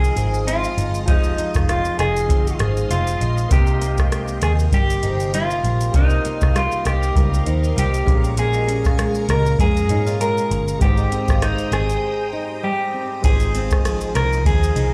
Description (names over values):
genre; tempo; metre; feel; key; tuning
indie pop, bedroom pop; 99 BPM; 4/4; swing 55% on 16ths; Ab major; A4 = 440 Hz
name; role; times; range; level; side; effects
clean electric guitar; melody; 0.0-14.9 s; Eb4 to Bb4; -25 LUFS; equal; lush chorus, slapback echo, analog delay
nylon-string guitar; accompaniment; 0.0-14.9 s; Ab2 to Ab4; -29 LUFS; equal; lush chorus, vibrato effect, slapback echo
warm upright piano; accompaniment; 0.0-14.9 s; F3 to G5; -36 LUFS; equal; none
string machine, full ensemble; sustained chords; 0.0-14.9 s; Ab3 to Eb6; -35 LUFS; equal; ensemble chorus
vintage muted picked electric bass; bass; 0.0-14.9 s; F1 to Ab2; -23 LUFS; equal; none
soft vintage rhythm box; drums; 0.0-14.9 s; hi-hat, kick drum, ride cymbal, rim click, shaker; -22 LUFS; equal; none
vibraphone with medium mallets; second line; 0.2-12.8 s; Ab3 to F5; -37 LUFS; equal; analog chorus, slapback echo, analog delay
room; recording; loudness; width
little or no reverb; live gig heard through the venue's PA, club reverb; -19 LUFS; mono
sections
0.0-13.2 A section; 13.2-14.9 A section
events
break 12.0-13.2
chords
0.0 Fm7; 3.5 Cm7; 8.1 Bbm7; 10.8 Abmaj7; 13.2 Ab6